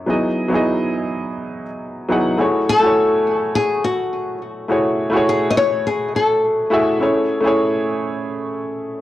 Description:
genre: chillout.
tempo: 104 BPM.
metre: 4/4.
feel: straight.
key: F# dorian.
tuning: A4 = 440 Hz.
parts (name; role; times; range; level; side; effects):
warm baby grand piano; accompaniment; 0.0-9.0 s; F#3 to G#5; -18 LUFS; equal; auto-pan, cassette tape, analog delay.
nylon-string guitar; melody; 2.7-6.7 s; F#4 to D#5; -18 LUFS; left 2 dB; tape echo.
room: wet studio reverb, RT60 0.6 s.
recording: home recording on cassette.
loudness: -16 LUFS.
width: side -14 dB against mid.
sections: 0.0-2.4 A section; 2.4-9.0 B section.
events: none.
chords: 0.1 Emaj7/F#; 2.4 F#m9; 7.0 Amaj7.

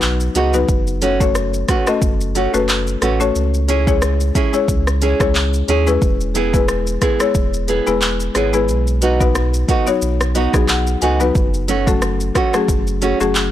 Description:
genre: dancehall.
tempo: 90 BPM.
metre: 4/4.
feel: swing 56% on 16ths.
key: unclear.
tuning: A4 = 439 Hz.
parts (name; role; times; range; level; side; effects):
warm sub bass; bass; 0.0-13.5 s; E1 to D#2; -20 LUFS; right 1 dB; none.
deep house drum kit; drums; 0.0-13.5 s; handclaps, hi-hat, kick drum, rim click, shaker; -19 LUFS; equal; none.
buzzing marimba with medium mallets; accompaniment; 0.3-13.3 s; F#3 to G#5; -19 LUFS; left 5 dB; none.
nylon-string guitar; arpeggios; 0.4-13.2 s; A3 to G#4; -20 LUFS; right 6 dB; none.
room: digital ambience.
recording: blown-out, overdriven recording, overdrive.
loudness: -14 LUFS.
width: side -12 dB against mid.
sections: 0.0-13.5 A section.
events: marimba fill 10.0-11.4.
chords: 0.0 B; 0.7 F#m; 3.4 C#m; 6.0 E; 8.7 B; 11.4 F#m.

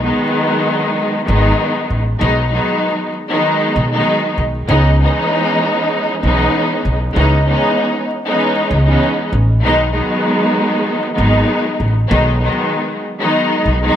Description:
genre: hip hop.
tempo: 97 BPM.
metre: 4/4.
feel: swing 55% on 16ths.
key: unclear.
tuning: A4 = 439 Hz.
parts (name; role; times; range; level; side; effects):
warm studio string section; accompaniment; 0.0-14.0 s; D#3 to D#4; -14 LUFS; equal; high-pass filter, low-pass filter.
upright bass; bass; 0.0-13.9 s; G#1 to C#2; -15 LUFS; equal; none.
room: light reverb, studio reverb.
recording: vinyl crackle.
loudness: -13 LUFS.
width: side -10 dB against mid.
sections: 0.0-14.0 A section.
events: none.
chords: 0.0 G#m7; 4.7 C#m9; 9.6 G#m7.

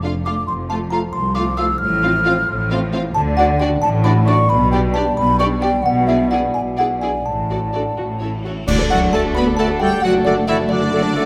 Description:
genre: cinematic, playful, whimsical film cue.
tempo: 89 BPM (dotted quarters).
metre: 6/8.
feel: straight.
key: D major from 3.2 s.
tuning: A4 = 439 Hz.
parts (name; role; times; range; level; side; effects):
rich studio violin section; melody; 0.0-11.3 s; A4 to F5; -32 LUFS; equal; none.
clear studio violin section; second line; 0.0-11.3 s; F4 to B5; -31 LUFS; equal; none.
clear studio viola section; accompaniment; 0.0-11.3 s; F#3 to A4; -28 LUFS; equal; none.
dark French horn section; sustained chords; 0.0-11.3 s; A3 to G#4; -28 LUFS; equal; none.
concert harp; arpeggios; 0.0-11.3 s; F#2 to D6; -29 LUFS; equal; none.
dark chamber double bass section; bass; 0.0-11.3 s; F1 to D2; -25 LUFS; equal; none.
rich studio cello section; bass; 0.0-11.3 s; C2 to B3; -26 LUFS; equal; none.
mellow hollow concert flute; second line; 0.2-11.2 s; E5 to F6; -23 LUFS; equal; none.
music box; melody; 0.3-11.3 s; D5 to F6; -26 LUFS; equal; none.
cymbal swell, clash cymbals and concert bass drum; percussion; 5.8-9.5 s; none; -28 LUFS; equal; none.
mellow cor anglais; second line; 8.7-11.3 s; D4 to B4; -28 LUFS; equal; none.
clear clarinet; second line; 8.9-11.2 s; A4; -30 LUFS; equal; none.
dark bassoon; accompaniment; 8.9-11.2 s; A3; -27 LUFS; equal; none.
room: moderate scoring stage reverb, RT60 1.5 s.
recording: none.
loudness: -17 LUFS.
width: mono.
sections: 0.0-8.7 A section; 8.7-11.3 B section.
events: band accent 8.7-9.1.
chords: 0.5 F; 1.8 F/A; 3.2 D; 4.5 G/B; 5.8 E7/B; 7.3 D/A; 8.0 A; 8.7 D; 10.0 D/F#.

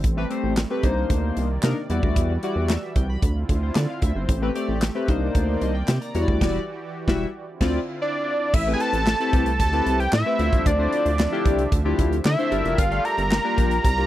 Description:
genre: early-eighties boogie funk.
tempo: 113 BPM.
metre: 4/4.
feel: straight.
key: A phrygian from 8.5 s.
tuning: A4 = 440 Hz.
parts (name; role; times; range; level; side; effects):
warm analog pad; sustained chords; 0.0-14.1 s; C3 to E5; -34 LUFS; right 2 dB; chorus, tremolo.
rubbery square bass; bass; 0.0-14.1 s; E1 to D3; -24 LUFS; right 1 dB; none.
modern studio drum kit; drums; 0.0-14.1 s; crash cymbal, handclaps, hi-hat, kick drum, snare drum; -23 LUFS; equal; none.
chorused polysynth; accompaniment; 0.2-14.1 s; G3 to B5; -26 LUFS; left 3 dB; none.
fat analog lead; melody; 8.0-14.1 s; D5 to Bb5; -23 LUFS; right 1 dB; chorus.
room: little or no reverb.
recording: dry, close 1970s-style studio recording.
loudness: -20 LUFS.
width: side -14 dB against mid.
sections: 0.0-8.5 A section; 8.5-14.1 B section.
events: band accent 6.4-8.5.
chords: 0.0 Am9; 0.8 Cm9; 1.9 Em9; 3.2 Dm9; 4.3 Am9; 5.1 Cm9; 6.1 Em9; 7.5 Dm9; 8.5 Am9; 10.4 Dm9; 12.5 Gm9.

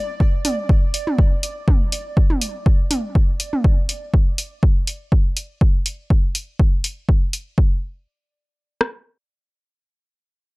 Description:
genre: minimal techno.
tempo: 122 BPM.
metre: 4/4.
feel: swing 54% on 16ths.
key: unclear.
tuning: A4 = 442 Hz.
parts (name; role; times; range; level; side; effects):
pulsing gated texture; texture; 0.0-3.7 s; D5; -32 LUFS; right 2 dB; chorus, built-in reverb, sidechain pumping.
punchy analog drum machine; drums; 0.2-8.9 s; kick drum, rim click; -16 LUFS; equal; none.
electronic hi-hat; drums; 0.4-7.4 s; none; -23 LUFS; left 1 dB; none.
electronic toms; percussion; 0.4-3.6 s; none; -25 LUFS; right 1 dB; none.
room: little or no reverb.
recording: dry, gritty hardware recording, transformer saturation.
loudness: -17 LUFS.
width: side -26 dB against mid.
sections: 0.0-7.6 A section; 7.6-10.6 B section.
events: none.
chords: none.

